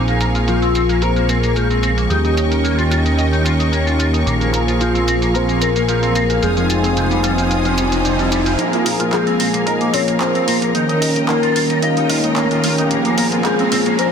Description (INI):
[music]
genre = nu-disco, nu disco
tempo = 111 BPM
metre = 4/4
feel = straight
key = Bb dorian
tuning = A4 = 441 Hz
[part]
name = warm analog pad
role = accompaniment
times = 0.0-14.1 s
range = Eb3 to Ab5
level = -19 LUFS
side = equal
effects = chorus, tape echo
[part]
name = clear symphonic string section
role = sustained chords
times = 0.0-14.1 s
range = Bb4 to Eb6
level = -25 LUFS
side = equal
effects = none
[part]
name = fat analog bass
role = bass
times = 0.0-14.1 s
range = Eb1 to Bb2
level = -21 LUFS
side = equal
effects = high-pass filter
[part]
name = electric guitar with an envelope filter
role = riff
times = 0.1-14.1 s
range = C3 to Eb5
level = -22 LUFS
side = left 1 dB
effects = ensemble chorus, vintage 12-bit sampler grit, low-pass filter
[part]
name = pop drum kit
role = drums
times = 0.1-14.1 s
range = handclaps, hi-hat, shaker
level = -24 LUFS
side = right 1 dB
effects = high-pass filter on hats, low-pass filter on hats, high-pass filter on perc, low-pass filter on perc, high-pass filter on snare, low-pass filter on snare
[part]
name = soft octave-layered synth lead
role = melody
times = 0.5-14.1 s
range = F4 to F5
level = -21 LUFS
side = left 2 dB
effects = chorus, phaser, tape echo
[part]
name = riser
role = sound effects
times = 6.2-14.1 s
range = none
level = -26 LUFS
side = right 1 dB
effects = none
[sound]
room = moderate lush hall reverb, RT60 2.3 s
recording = dense, heavily limited modern master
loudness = -14 LUFS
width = side -7 dB against mid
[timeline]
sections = 0.0-8.6 A section; 8.6-14.1 B section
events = riser 6.2-8.6, 8.6-14.1; build-up 8.6-14.1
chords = 0.0 Bbm7; 2.1 Eb7; 4.3 Bbm7; 6.4 Fm7; 8.6 Bb5; 10.8 Eb7; 12.9 Bb5